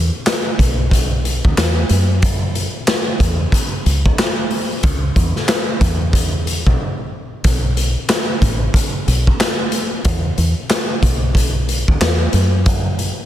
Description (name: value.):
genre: hip hop, boom-bap hip-hop.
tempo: 92 BPM.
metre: 4/4.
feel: swing 60% on 16ths.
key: unclear.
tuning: A4 = 442 Hz.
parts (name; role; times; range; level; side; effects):
deep dub fingered electric bass; bass; 0.0-13.1 s; A1 to F#2; -17 LUFS; equal; none.
raw garage drum kit; drums; 0.3-13.2 s; handclaps, hi-hat, kick drum, snare drum; -16 LUFS; equal; none.
room: little or no reverb.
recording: dense, heavily limited modern master.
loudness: -14 LUFS.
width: side -12 dB against mid.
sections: 0.0-13.3 A section.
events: break 6.8-7.4.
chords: none.